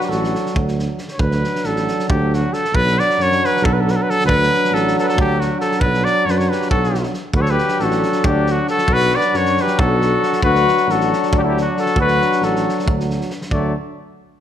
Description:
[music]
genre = balkan folk, Balkan brass band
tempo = 273 BPM (eighths)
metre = 7/8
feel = straight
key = D major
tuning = A4 = 438 Hz
[part]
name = mellow trumpet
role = melody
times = 0.0-13.7 s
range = F#4 to D5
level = -19 LUFS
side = equal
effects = none
[part]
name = warm flugelhorn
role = second line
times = 0.0-0.6, 6.5-13.7 s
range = A3 to B4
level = -21 LUFS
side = left 6 dB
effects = none
[part]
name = clear euphonium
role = accompaniment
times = 0.0-13.7 s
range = F#3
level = -24 LUFS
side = right 5 dB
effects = none
[part]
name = warm euphonium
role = accompaniment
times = 0.0-13.7 s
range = D4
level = -25 LUFS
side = left 5 dB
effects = none
[part]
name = loose indie drum kit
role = percussion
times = 0.0-13.7 s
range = kick drum, snare drum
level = -24 LUFS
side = equal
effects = none
[part]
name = dark tuba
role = bass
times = 0.1-13.7 s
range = A1 to F#2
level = -21 LUFS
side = right 1 dB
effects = none
[sound]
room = moderate recital hall reverb, RT60 1.6 s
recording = none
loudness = -15 LUFS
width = side -10 dB against mid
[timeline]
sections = 0.0-1.2 A section; 1.2-13.5 A section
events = none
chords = 0.0 D; 2.7 Bm; 4.3 D; 5.8 Bm; 7.3 D; 8.9 Bm; 10.4 D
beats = 0.09 0.31 0.53 0.75 0.97 | 1.19 1.41 1.63 1.85 2.08 2.29 2.52 | 2.73 2.96 3.17 3.39 3.61 3.83 4.05 | 4.27 4.49 4.71 4.93 5.15 5.37 5.59 | 5.81 6.03 6.25 6.47 6.68 6.90 7.12 | 7.34 7.56 7.78 8.00 8.22 8.44 8.66 | 8.88 9.10 9.32 9.54 9.76 9.98 10.20 | 10.42 10.64 10.86 11.08 11.30 11.52 11.74 | 11.96 12.19 12.41 12.63 12.85 13.07 13.29 | 13.51 13.73

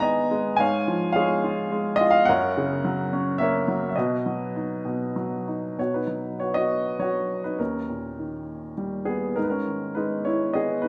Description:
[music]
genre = classical, lyrical solo piano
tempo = 95-108 BPM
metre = 3/4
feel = rubato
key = B major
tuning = A4 = 440 Hz
[part]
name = clear upright piano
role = solo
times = 0.0-10.9 s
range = D#2 to A#5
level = -25 LUFS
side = equal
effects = none
[sound]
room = moderate recital hall reverb, RT60 1.6 s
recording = none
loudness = -25 LUFS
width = mono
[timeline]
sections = 0.0-5.8 A section; 5.8-10.9 B section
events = none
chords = 0.0 G#m; 0.6 C#/G#; 2.3 F#; 4.0 B; 7.6 D#7; 9.4 G#m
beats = 0.01 | 0.58 1.16 1.72 | 2.28 2.84 3.40 | 3.97 4.55 5.16 | 5.79 6.40 7.00 | 7.60 8.19 8.78 | 9.37 9.96 10.55

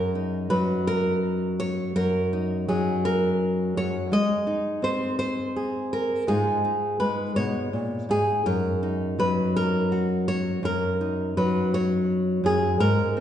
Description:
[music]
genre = folk, solo fingerstyle acoustic guitar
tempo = 55 BPM (dotted quarters)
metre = 6/8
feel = straight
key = F# major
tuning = A4 = 439 Hz
[part]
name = nylon-string guitar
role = solo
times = 0.0-13.2 s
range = F#2 to D#5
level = -22 LUFS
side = equal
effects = none
[sound]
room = wet recital hall reverb, RT60 1.7 s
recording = recorded in a church or concert hall, nothing above 10.4 kHz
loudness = -22 LUFS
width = side -10 dB against mid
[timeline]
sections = 0.0-13.2 A section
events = none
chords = 0.0 F#6; 4.1 G#; 6.3 C#add9/G#; 8.5 F#6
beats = 0.87 | 1.96 3.04 | 4.12 5.20 | 6.28 7.37 | 8.47 9.56 | 10.65 11.73 | 12.81

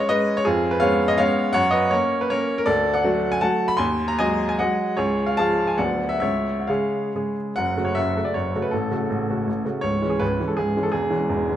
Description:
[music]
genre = classical, romantic triple-time dance for piano with dotted rhythms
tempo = 124-177 BPM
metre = 3/4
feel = rubato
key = F# minor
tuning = A4 = 439 Hz
[part]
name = clear baby grand piano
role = solo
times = 0.0-11.6 s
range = C#1 to B#5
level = -20 LUFS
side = equal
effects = none
[sound]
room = moderate recital hall reverb, RT60 1.6 s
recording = none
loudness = -20 LUFS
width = side -11 dB against mid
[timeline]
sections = 0.0-7.6 A section; 7.6-11.6 B section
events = none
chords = 0.0 C#7/E#; 1.6 F#; 2.7 D; 3.8 G#5/D#; 5.0 C#; 5.8 Bm/D; 6.2 C#; 7.6 F#m; 8.7 F#m/A; 9.8 C#m; 10.9 C#m/E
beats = 0.10 | 0.46 0.82 1.19 | 1.55 1.93 2.31 | 2.68 3.04 3.42 | 3.79 4.19 4.59 | 4.97 5.37 5.79 | 6.22 6.68 7.15 | 7.57 7.97 8.36 | 8.73 9.11 9.48 | 9.84 10.21 10.59 | 10.93 11.30

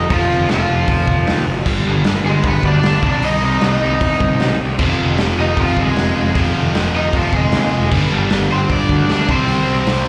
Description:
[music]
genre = punk rock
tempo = 154 BPM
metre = 4/4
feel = straight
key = unclear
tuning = A4 = 439 Hz
[part]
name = overdriven electric guitar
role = melody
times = 0.0-10.1 s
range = F3 to Eb5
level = -21 LUFS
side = equal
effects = slapback echo
[part]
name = overdriven electric guitar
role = riff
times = 0.0-10.1 s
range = F2 to C4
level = -24 LUFS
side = equal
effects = none
[part]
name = fuzz picked electric bass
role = bass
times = 0.0-10.0 s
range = F1 to Eb2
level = -22 LUFS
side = equal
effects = overdrive
[part]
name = raw garage drum kit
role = drums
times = 0.1-10.0 s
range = crash cymbal, hi-hat, kick drum, snare drum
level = -21 LUFS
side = equal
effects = none
[part]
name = distorted electric guitar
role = riff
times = 4.8-10.1 s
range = F2 to C4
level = -26 LUFS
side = equal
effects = overdrive, slapback echo
[sound]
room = little or no reverb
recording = live gig heard through the venue's PA, club ambience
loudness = -16 LUFS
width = mono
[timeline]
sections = 0.0-10.1 A section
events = none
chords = 0.0 F5; 1.7 G; 3.0 Cm; 4.8 Fm; 7.9 G5; 9.3 C5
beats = | 0.11 0.50 0.89 1.28 | 1.67 2.06 2.45 2.84 | 3.23 3.62 4.02 4.41 | 4.80 5.19 5.58 5.97 | 6.36 6.75 7.14 7.53 | 7.92 8.31 8.70 9.10 | 9.49 9.88

